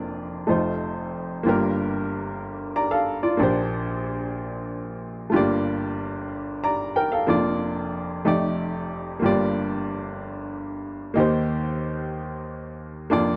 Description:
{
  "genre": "gospel",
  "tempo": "62 BPM (dotted quarters)",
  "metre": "6/8",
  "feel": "straight",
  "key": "unclear",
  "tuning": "A4 = 438 Hz",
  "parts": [
    { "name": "clear baby grand piano", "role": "solo", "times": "0.0-13.4 s", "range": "F1 to Bb5", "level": "-25 LUFS", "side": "equal", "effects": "none" }
  ],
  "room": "little or no reverb",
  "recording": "dry, close 1970s-style studio recording",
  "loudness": "-25 LUFS",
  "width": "mono",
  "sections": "0.0-1.5 A section; 1.5-13.4 B section",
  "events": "none",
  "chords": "0.5 F7; 1.5 Gm7; 3.4 Bb69; 5.3 Gm7; 7.3 Bb/F; 8.3 F13; 9.2 Gm7; 11.2 Eb6"
}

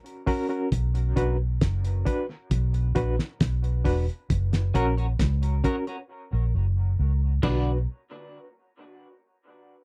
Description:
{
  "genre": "dub reggae",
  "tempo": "67 BPM",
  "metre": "4/4",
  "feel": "straight",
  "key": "B harmonic minor",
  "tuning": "A4 = 438 Hz",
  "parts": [
    { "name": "cloth-damped thuddy drum kit", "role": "drums", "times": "0.1-7.6 s", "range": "crash cymbal, hi-hat, kick drum, snare drum", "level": "-28 LUFS", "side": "equal", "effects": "none" },
    { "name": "overdriven reed electric piano", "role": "stabs", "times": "0.3-7.8 s", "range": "C#4 to B4", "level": "-33 LUFS", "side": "equal", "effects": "fast tremolo, dub echo" },
    { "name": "vintage muted fingered electric bass", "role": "bass", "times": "0.7-7.9 s", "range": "E1 to C#2", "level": "-26 LUFS", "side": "equal", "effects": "none" },
    { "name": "clean electric guitar", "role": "accompaniment", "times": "4.7-7.7 s", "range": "C#4 to D5", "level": "-39 LUFS", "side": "equal", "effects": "tremolo, dub echo" },
    { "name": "electric guitar at the edge of break-up", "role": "arpeggios", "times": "7.4-7.7 s", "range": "D3", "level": "-39 LUFS", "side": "equal", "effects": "none" },
    { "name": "bongos", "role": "percussion", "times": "7.4-7.8 s", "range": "none", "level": "-42 LUFS", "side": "equal", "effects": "none" }
  ],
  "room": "little or no reverb",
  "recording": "dry, close 1970s-style studio recording",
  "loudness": "-26 LUFS",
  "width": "mono",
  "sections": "0.0-7.9 A section; 7.9-9.8 B section",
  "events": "break 0.0-7.9; drums muted 6.1-7.9",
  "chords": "0.0 F#; 0.7 Bm; 4.3 F#; 7.4 Bm; 7.9 N.C."
}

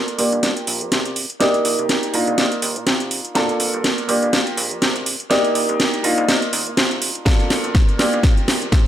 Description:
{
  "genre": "filtered disco house",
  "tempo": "123 BPM",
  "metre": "4/4",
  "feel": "swing 56% on 16ths",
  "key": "C dorian",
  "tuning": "A4 = 445 Hz",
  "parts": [
    { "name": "bright baby grand piano", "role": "accompaniment", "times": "0.0-8.9 s", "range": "Bb3 to A4", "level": "-20 LUFS", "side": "right 1 dB", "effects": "phaser, sidechain pumping, low-pass filter" },
    { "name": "house drum kit", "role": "drums", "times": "0.1-8.8 s", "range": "hi-hat, snare drum", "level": "-19 LUFS", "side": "equal", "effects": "sidechain pumping on hats" },
    { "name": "plucky analog bass", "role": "bass", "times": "0.2-8.9 s", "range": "F1 to C3", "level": "-29 LUFS", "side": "equal", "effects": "sidechain pumping, high-pass filter, low-pass filter" },
    { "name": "electronic kick drum", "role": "drums", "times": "7.3-8.8 s", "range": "none", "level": "-14 LUFS", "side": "equal", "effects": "none" }
  ],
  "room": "moderate digital room reverb, RT60 1.1 s",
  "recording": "none",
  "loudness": "-16 LUFS",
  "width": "side -11 dB against mid",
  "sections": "0.0-8.9 A section",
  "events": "build-up 0.0-8.9; drum fill 0.0-8.9; filter sweep 0.0-8.9",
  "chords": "0.0 Gm7; 1.2 Cm7; 3.4 Gm7; 5.1 Cm7; 7.3 Gm7"
}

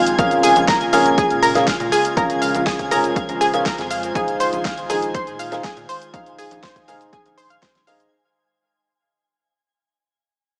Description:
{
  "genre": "progressive house",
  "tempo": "121 BPM",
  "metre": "4/4",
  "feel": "straight",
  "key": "unclear",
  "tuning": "A4 = 439 Hz",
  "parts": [
    { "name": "airy breathy pad", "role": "sustained chords", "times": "0.0-8.1 s", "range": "Db3 to C5", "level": "-27 LUFS", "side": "equal", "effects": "chorus, sidechain pumping" },
    { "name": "tight sequencer bass", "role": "bass", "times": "0.0-8.1 s", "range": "F1 to Bb2", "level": "-36 LUFS", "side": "equal", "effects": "sidechain pumping" },
    { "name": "twinkling granular texture", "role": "texture", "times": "0.0-8.1 s", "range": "Ab5", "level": "-29 LUFS", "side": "equal", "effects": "built-in reverb, sidechain pumping" },
    { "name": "deep house drum kit", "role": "drums", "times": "0.1-8.1 s", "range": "hi-hat, shaker, snare drum", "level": "-30 LUFS", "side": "equal", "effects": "overdrive, sidechain pumping on hats, small room ambience, sidechain pumping on cymbals, sidechain pumping on perc" },
    { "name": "analog pluck", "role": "arpeggios", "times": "0.2-7.9 s", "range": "Ab4 to F6", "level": "-23 LUFS", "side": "equal", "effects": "lush chorus, cassette tape, sidechain pumping, dub echo" },
    { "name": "felt-muted upright piano", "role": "stabs", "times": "0.2-8.1 s", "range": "Db4 to Ab5", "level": "-24 LUFS", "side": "equal", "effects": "vintage 12-bit sampler grit, sidechain pumping, dub echo" },
    { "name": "electronic kick drum", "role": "drums", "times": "0.2-7.7 s", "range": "none", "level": "-27 LUFS", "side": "equal", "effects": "overdrive, small room ambience" }
  ],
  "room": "light reverb",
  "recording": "small speaker sound",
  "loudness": "-18 LUFS",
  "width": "mono",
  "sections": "0.0-8.1 A section",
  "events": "drop 0.0-8.1; fade-out 0.2-8.1",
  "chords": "0.2 Bbm7; 4.2 Fm7/Bb"
}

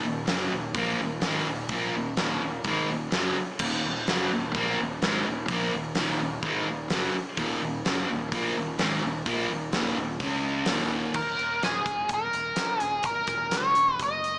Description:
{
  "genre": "classic rock",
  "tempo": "127 BPM",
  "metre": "4/4",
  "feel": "straight",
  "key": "Eb minor",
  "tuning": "A4 = 440 Hz",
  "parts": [
    { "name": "sludgy distorted guitar", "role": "riff", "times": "0.0-11.1 s", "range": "Eb2 to Db4", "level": "-27 LUFS", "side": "equal", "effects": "overdrive" },
    { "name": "fingered electric bass", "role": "bass", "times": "0.0-14.4 s", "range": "Eb1 to Db2", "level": "-39 LUFS", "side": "equal", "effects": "none" },
    { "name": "huge arena drum kit", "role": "drums", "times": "0.3-14.3 s", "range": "crash cymbal, hi-hat, kick drum, snare drum", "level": "-30 LUFS", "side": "equal", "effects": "none" },
    { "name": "octave-fuzz lead guitar", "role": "melody", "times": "11.2-14.4 s", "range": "Ab4 to Eb5", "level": "-24 LUFS", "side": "equal", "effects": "wah, distortion" }
  ],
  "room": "light reverb",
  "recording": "small speaker sound",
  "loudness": "-24 LUFS",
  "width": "side -26 dB against mid",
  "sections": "0.0-11.2 A section; 11.2-14.4 B section",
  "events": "none",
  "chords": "0.0 Ebm; 10.2 Db5; 10.7 Eb5"
}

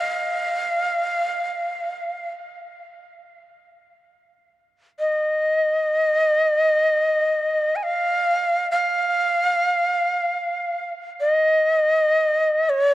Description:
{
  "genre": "world meditative, free-time meditation music",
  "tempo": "free time",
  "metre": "none",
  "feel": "none",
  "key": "unclear",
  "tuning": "A4 = 440 Hz",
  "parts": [
    { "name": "breathy bright Native American-style cedar flute", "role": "solo", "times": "0.0-12.9 s", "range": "Db5 to Ab5", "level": "-19 LUFS", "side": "equal", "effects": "ping-pong delay" }
  ],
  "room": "wet booth ambience, RT60 0.2 s",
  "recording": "worn, warbling old tape, cassette tape, warbly pitch drift",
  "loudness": "-19 LUFS",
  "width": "side -16 dB against mid",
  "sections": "0.0-12.9 A section",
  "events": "none",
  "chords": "none"
}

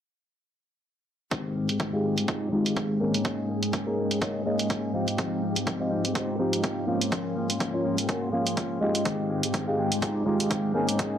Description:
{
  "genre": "filtered disco house",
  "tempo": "124 BPM",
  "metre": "4/4",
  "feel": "swing 56% on 16ths",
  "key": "F minor",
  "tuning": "A4 = 439 Hz",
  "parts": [
    { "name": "string machine, full ensemble", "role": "sustained chords", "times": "1.3-11.2 s", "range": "Ab3 to G5", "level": "-31 LUFS", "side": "equal", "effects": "ensemble chorus, sidechain pumping, low-pass filter" },
    { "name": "electric guitar with an envelope filter", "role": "riff", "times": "1.3-11.2 s", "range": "Eb3 to Ab4", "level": "-32 LUFS", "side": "left 2 dB", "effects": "sidechain pumping, low-pass filter" },
    { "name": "electronic hi-hat", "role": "drums", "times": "1.3-11.1 s", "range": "none", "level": "-31 LUFS", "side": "right 2 dB", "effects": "sidechain pumping on hats, low-pass filter on hats, low-pass filter on room" },
    { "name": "electronic kick drum", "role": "drums", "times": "1.3-11.1 s", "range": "none", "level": "-32 LUFS", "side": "equal", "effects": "overdrive, high-pass filter on kick, high-pass filter on room" },
    { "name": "mellow clav", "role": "accompaniment", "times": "1.9-11.2 s", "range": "Ab3 to Ab4", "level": "-28 LUFS", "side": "equal", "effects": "phaser, sidechain pumping, low-pass filter" }
  ],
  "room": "light reverb",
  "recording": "none",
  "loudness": "-25 LUFS",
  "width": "side -9 dB against mid",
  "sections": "1.3-11.2 A section",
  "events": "filter sweep 1.3-11.2",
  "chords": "1.3 Fm9; 3.2 Eb7sus4; 4.9 Dbmaj9#11 (rootless); 7.1 Gbmaj7 (rootless); 9.1 Fm9"
}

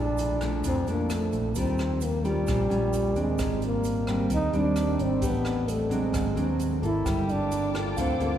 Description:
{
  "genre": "bossa nova",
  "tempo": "131 BPM",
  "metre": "4/4",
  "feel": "straight",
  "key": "unclear",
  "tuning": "A4 = 440 Hz",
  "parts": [
    { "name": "breathy trombone", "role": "melody", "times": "0.0-8.4 s", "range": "G3 to E4", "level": "-28 LUFS", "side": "equal", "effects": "none" },
    { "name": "nylon-string guitar", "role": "accompaniment", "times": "0.0-8.4 s", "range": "F2 to B4", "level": "-29 LUFS", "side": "right 1 dB", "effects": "none" },
    { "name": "fingered electric bass", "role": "bass", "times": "0.0-8.4 s", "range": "G1 to F2", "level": "-30 LUFS", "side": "left 1 dB", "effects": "none" },
    { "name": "open jazz drum kit", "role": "drums", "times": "0.2-8.3 s", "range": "hi-hat, kick drum, rim click", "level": "-36 LUFS", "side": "equal", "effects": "none" },
    { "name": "tube shaker", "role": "percussion", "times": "0.2-8.4 s", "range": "none", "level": "-49 LUFS", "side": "right 6 dB", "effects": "none" },
    { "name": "warm studio string section", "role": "sustained chords", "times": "7.0-8.4 s", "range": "F5 to D6", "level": "-40 LUFS", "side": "left 1 dB", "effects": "none" },
    { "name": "mellow tine electric piano", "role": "accompaniment", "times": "7.1-8.4 s", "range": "F5 to G5", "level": "-35 LUFS", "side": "right 3 dB", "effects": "medium stereo tremolo" }
  ],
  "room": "wet cathedral reverb, RT60 6.8 s",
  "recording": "recorded in a church or concert hall",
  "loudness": "-24 LUFS",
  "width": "side -10 dB against mid",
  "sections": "0.0-8.4 A section",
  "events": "none",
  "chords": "0.0 Bbmaj7; 1.6 Eb9; 3.4 Abmaj9#11; 5.2 Am9; 6.1 Ab7#11; 7.1 Gm9"
}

